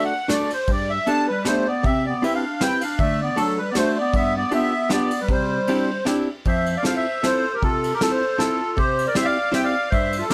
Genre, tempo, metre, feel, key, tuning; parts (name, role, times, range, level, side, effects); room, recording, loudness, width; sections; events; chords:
musette waltz; 156 BPM; 3/4; swing 53% on 8ths; C major, F major from 6.5 s; A4 = 440 Hz
accordion; melody; 0.0-10.3 s; A4 to A5; -26 LUFS; equal; light tremolo tuning
archtop guitar, miked and amplified; accompaniment; 0.0-10.3 s; F2 to C5; -27 LUFS; equal
soft brush drum kit; drums; 0.3-10.3 s; kick drum, ride cymbal, snare drum; -30 LUFS; equal
clear clarinet; second line; 1.1-10.3 s; F#3 to E5; -28 LUFS; equal
light reverb; -21 LUFS; mono
0.0-6.5 A section; 6.5-10.3 B section
0.0 D; 0.7 Gadd9; 1.8 Cmaj7; 3.0 D; 4.1 G7; 5.3 Cadd9; 6.5 Fmaj7; 8.8 C